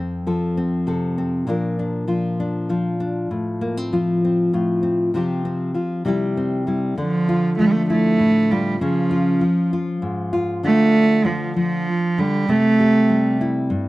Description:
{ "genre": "acoustic folk duo or small band", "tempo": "65 BPM (dotted quarters)", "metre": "6/8", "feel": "straight", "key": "F major", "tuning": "A4 = 440 Hz", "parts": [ { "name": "nylon-string guitar", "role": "accompaniment", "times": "0.0-13.9 s", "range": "F2 to Bb4", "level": "-20 LUFS", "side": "left 1 dB", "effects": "none" }, { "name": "warm cello", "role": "second line", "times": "7.0-13.4 s", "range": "F3 to A3", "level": "-17 LUFS", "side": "right 2 dB", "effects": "none" } ], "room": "moderate studio reverb, RT60 0.6 s", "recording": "dry, close 1970s-style studio recording", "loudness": "-17 LUFS", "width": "side -18 dB against mid", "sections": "0.0-7.0 A section; 7.0-13.9 B section", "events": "cello solo 7.0-13.9", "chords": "0.0 F; 1.5 Bb; 3.3 F/A; 5.1 Csus4; 6.1 C; 7.0 Dmadd9; 8.8 Db; 10.7 Dm; 12.5 C" }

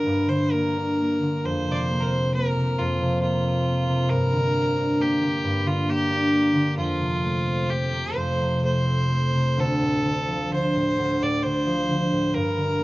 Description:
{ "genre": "celtic folk, Celtic slow air", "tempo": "66 BPM", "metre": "3/4", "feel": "uneven beats, rubato", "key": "G minor", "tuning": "A4 = 440 Hz", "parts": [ { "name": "bright fiddle", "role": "melody", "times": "0.0-12.8 s", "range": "F4 to D5", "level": "-26 LUFS", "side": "right 1 dB", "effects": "none" }, { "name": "concert harp", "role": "accompaniment", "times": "0.0-12.8 s", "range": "D2 to D4", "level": "-22 LUFS", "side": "equal", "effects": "none" } ], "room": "little or no reverb", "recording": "recorded outdoors, with no room sound, nothing above 7.6 kHz", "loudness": "-21 LUFS", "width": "side -19 dB against mid", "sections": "0.0-12.8 A section", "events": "none", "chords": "0.0 Gm; 1.5 Fsus4; 4.1 Gm; 6.8 F; 9.6 Dm; 12.3 Gm" }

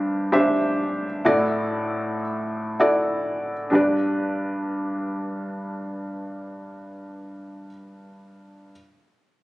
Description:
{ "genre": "pop", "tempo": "97 BPM", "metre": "4/4", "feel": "straight", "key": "G major", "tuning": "A4 = 440 Hz", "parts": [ { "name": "clear upright piano", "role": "accompaniment", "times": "0.0-8.7 s", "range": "G2 to E5", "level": "-22 LUFS", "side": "equal", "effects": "none" } ], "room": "moderate plate reverb, RT60 1.7 s, small room ambience", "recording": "recorded on a phone in the room, club reverb, compression", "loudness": "-21 LUFS", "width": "side -18 dB against mid", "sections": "0.0-3.7 A section; 3.7-6.2 B section", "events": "none", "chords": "0.0 Csus2; 1.2 Dadd9; 3.7 G" }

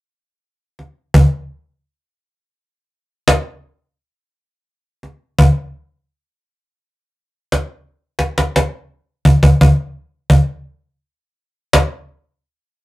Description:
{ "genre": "metal", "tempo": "57 BPM", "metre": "4/4", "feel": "swing 65% on 8ths", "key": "none", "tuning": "none", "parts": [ { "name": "cajon", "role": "drums", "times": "0.8-12.0 s", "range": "none", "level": "-11 LUFS", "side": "equal", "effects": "none" } ], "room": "moderate studio reverb, RT60 0.5 s", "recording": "rough rehearsal-room recording", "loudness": "-13 LUFS", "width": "side -18 dB against mid", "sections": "0.0-9.6 A section; 9.6-12.8 B section", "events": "drum fill 7.5-9.6", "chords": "none" }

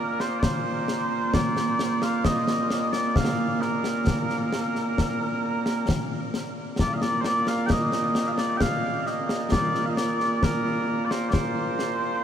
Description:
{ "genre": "scottish traditional, Scottish pipe music", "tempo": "66 BPM", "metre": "3/4", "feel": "straight", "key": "Bb major", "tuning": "A4 = 439 Hz", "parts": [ { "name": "mellow small bagpipes", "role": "melody", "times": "0.0-12.2 s", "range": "Bb2 to G5", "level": "-24 LUFS", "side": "right 1 dB", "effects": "none" }, { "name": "concert snare drum and concert bass drum", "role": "drums", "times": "0.2-12.0 s", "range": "none", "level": "-27 LUFS", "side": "left 1 dB", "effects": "none" } ], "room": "wet huge ambient reverb, RT60 7.2 s", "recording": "heard from further back in the room", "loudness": "-23 LUFS", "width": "side -9 dB against mid", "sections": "0.0-6.8 A section; 6.8-12.2 A section", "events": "none", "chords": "none" }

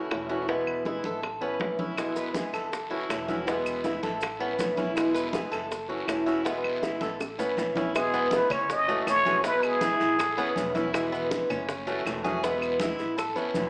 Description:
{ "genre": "latin, Cuban son and guajira", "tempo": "161 BPM", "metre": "4/4", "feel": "straight", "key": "E major", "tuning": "A4 = 440 Hz", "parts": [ { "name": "fingerpicked swing-style acoustic guitar", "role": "accompaniment", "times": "0.0-13.7 s", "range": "B2 to F#4", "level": "-34 LUFS", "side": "equal", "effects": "none" }, { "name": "Cuban tres", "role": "arpeggios", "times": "0.0-13.7 s", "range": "A3 to B4", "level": "-32 LUFS", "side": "equal", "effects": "slapback echo" }, { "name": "upright bass", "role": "bass", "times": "0.0-13.7 s", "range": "E1 to A1", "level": "-47 LUFS", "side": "equal", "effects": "none" }, { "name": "bongos", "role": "percussion", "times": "0.1-13.7 s", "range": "none", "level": "-39 LUFS", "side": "equal", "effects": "none" }, { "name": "claves", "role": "percussion", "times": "0.1-13.4 s", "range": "none", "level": "-41 LUFS", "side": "equal", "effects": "none" }, { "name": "congas", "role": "percussion", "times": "0.1-13.7 s", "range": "none", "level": "-41 LUFS", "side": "equal", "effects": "none" }, { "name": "guiro", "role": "percussion", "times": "2.0-13.7 s", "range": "none", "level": "-45 LUFS", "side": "equal", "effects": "none" }, { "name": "maracas", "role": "percussion", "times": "2.0-13.7 s", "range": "none", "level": "-51 LUFS", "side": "equal", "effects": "none" }, { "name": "trumpet with plunger mute", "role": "melody", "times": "8.0-10.8 s", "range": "G#4 to D#5", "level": "-28 LUFS", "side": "equal", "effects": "none" } ], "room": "moderate large studio reverb, RT60 1.1 s", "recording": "small speaker sound", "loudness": "-28 LUFS", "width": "mono", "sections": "0.0-8.0 A section; 8.0-13.7 B section", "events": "drum fill 7.0-8.0", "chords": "0.5 E; 1.2 Aadd9; 2.0 E; 2.7 F#m7; 3.5 E; 4.2 Aadd9; 5.0 E; 5.7 F#m7; 6.5 E; 7.2 Aadd9; 8.0 E; 8.7 F#m7; 9.4 E; 10.2 Aadd9; 10.9 E; 11.7 F#m7; 12.4 E; 13.2 Aadd9" }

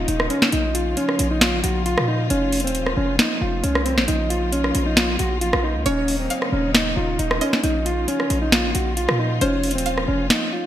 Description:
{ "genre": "hip hop, trap", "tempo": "135 BPM", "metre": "4/4", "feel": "half-time", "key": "Bb harmonic minor", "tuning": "A4 = 443 Hz", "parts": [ { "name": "mellow electric guitar", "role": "melody", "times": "0.0-10.7 s", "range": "C4 to Gb4", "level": "-23 LUFS", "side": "equal", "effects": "spring reverb, low-pass filter" }, { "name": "bright studio string section", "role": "sustained chords", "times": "0.0-10.7 s", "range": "Db3 to F4", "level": "-30 LUFS", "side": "left 1 dB", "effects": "none" }, { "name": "hard-hitting 808-style bass", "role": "bass", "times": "0.0-10.3 s", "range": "Eb1 to Bb2", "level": "-24 LUFS", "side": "equal", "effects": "none" }, { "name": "booming analog drum machine", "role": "drums", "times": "0.1-10.4 s", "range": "hi-hat, rim click, snare drum", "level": "-21 LUFS", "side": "equal", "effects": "gated reverb" }, { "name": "string-like resonator pluck", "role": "second line", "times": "5.9-10.7 s", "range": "C5 to F5", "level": "-29 LUFS", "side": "right 2 dB", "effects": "chorus, ping-pong delay" } ], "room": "light reverb", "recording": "bright 1980s-style digital production", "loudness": "-18 LUFS", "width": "side -11 dB against mid", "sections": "0.0-10.7 A section", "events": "kick muted 10.3-10.7", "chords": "0.0 Ebm7; 0.5 Bbm; 2.3 F; 4.1 Bbm; 5.9 Ebm7; 7.6 Bbm; 9.4 F" }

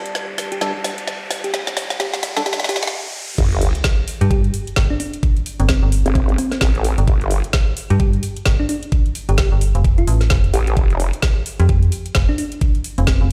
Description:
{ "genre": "bass house", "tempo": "130 BPM", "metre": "4/4", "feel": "swing 59% on 16ths", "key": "unclear", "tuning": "A4 = 440 Hz", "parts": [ { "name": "riser and sub drop", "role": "sound effects", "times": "0.0-5.2 s", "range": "none", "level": "-30 LUFS", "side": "equal", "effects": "none" }, { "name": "deep dark ambient pad", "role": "texture", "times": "0.0-2.9 s", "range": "G4 to A5", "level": "-37 LUFS", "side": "equal", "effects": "chorus, built-in reverb, sidechain pumping" }, { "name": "garage drum kit", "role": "drums", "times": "0.1-13.2 s", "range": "crash cymbal, hi-hat, snare drum", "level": "-26 LUFS", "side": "equal", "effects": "none" }, { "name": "thumb-piano-like synth pluck", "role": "melody", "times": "0.5-13.2 s", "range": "C4 to G4", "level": "-29 LUFS", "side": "equal", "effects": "chorus, tape echo" }, { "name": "percussive organ stab", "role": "stabs", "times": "0.6-2.4 s", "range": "G3 to A4", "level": "-28 LUFS", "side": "equal", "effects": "analog chorus, sidechain pumping, tape echo" }, { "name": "vowel-sweep wobble bass", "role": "bass", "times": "3.4-7.4, 10.5-11.1 s", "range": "F1 to A1", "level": "-21 LUFS", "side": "equal", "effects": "chorus, overdrive, sidechain pumping" }, { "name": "electronic kick drum", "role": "drums", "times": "3.4-13.2 s", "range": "none", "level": "-19 LUFS", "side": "equal", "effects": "none" }, { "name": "metallic FM bass", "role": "bass", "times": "4.2-13.3 s", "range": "F1 to G2", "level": "-18 LUFS", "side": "equal", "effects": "overdrive, sidechain pumping" } ], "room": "digital ambience", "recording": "played on a big sound system in a bare room, stone room reverb, high-pass filter", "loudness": "-18 LUFS", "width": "mono", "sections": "0.0-3.4 A section; 3.4-13.3 B section", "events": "build-up 0.0-3.4; drum fill 0.0-2.9; riser 0.0-3.4; stop 2.9-3.4; drop 3.4-13.3; impact 3.4-5.2", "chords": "0.0 Gsus2; 3.4 N.C." }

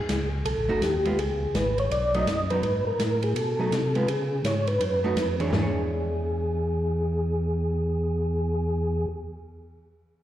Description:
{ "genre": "soul jazz organ trio", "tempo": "166 BPM", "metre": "4/4", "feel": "swing 64% on 8ths", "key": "E mixolydian", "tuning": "A4 = 440 Hz", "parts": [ { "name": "percussive tonewheel organ", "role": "melody", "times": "0.0-9.1 s", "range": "G4 to D#5", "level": "-27 LUFS", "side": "equal", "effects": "slow rotary speaker, chorus vibrato, slapback echo" }, { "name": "tonewheel organ", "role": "bass", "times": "0.0-9.1 s", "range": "F#1 to C#3", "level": "-27 LUFS", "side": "equal", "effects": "overdrive, chorus vibrato, slow rotary speaker" }, { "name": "open jazz drum kit", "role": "drums", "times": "0.1-5.6 s", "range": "hi-hat, ride cymbal, snare drum, toms", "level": "-32 LUFS", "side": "equal", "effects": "none" }, { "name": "archtop guitar, miked and amplified", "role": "accompaniment", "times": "0.7-9.2 s", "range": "E3 to C#5", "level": "-32 LUFS", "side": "right 3 dB", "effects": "slapback echo" } ], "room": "light reverb", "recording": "live gig heard through the venue's PA, recital hall reverb", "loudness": "-23 LUFS", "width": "side -12 dB against mid", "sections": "0.0-5.5 A section; 5.5-8.4 B section", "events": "none", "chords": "0.5 B7; 1.2 C#5; 1.9 B7; 2.6 G#madd9; 3.4 B7; 4.1 C#5; 4.8 B7; 5.5 E6" }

